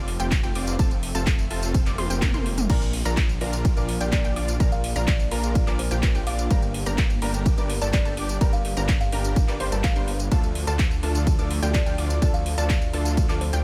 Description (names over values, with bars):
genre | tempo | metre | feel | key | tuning
EDM, festival progressive house | 126 BPM | 4/4 | straight | unclear | A4 = 440 Hz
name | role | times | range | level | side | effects
lush unison pad | sustained chords | 0.0-13.6 s | D3 to E5 | -41 LUFS | equal | none
unison pluck | arpeggios | 0.0-13.6 s | G5 to D6 | -39 LUFS | equal | sidechain pumping, tape echo
dense compressed supersaw | riff | 0.0-13.6 s | C4 to D5 | -36 LUFS | equal | sidechain pumping, tape echo
detuned saw bass | bass | 0.0-13.6 s | F1 to D2 | -29 LUFS | equal | chorus, sidechain pumping
house drum kit | drums | 0.1-13.6 s | crash cymbal, handclaps, hi-hat, ride cymbal, tambourine, toms | -34 LUFS | equal | none
electronic kick drum | drums | 0.3-13.3 s | none | -24 LUFS | equal | none
swell | sound effects | 1.9-2.7 s | none | -41 LUFS | equal | none
clear baby grand piano | accompaniment | 2.7-13.6 s | G2 to C5 | -37 LUFS | equal | sidechain pumping
kalimba | melody | 4.0-13.6 s | C5 to F5 | -36 LUFS | equal | tape echo
room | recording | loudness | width
little or no reverb | none | -23 LUFS | mono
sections
0.0-13.6 A section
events
swell 1.9-2.7; drum fill 2.0-2.7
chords
0.0 F; 2.7 Bb; 6.5 Gm; 10.3 Dm